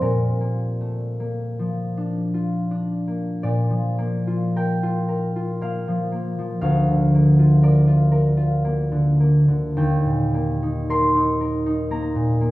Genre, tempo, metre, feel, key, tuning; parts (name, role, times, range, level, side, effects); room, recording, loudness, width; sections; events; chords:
classical, solo harp piece; 51-61 BPM; 3/4; rubato; Bb major; A4 = 440 Hz
concert harp; solo; 0.0-12.5 s; D2 to C6; -18 LUFS; equal
wet recital hall reverb, RT60 1.4 s; heard from further back in the room; -18 LUFS; side -18 dB against mid
0.0-3.4 A section; 3.4-12.5 B section
0.0 Bb; 6.6 Bb/D; 9.8 Eb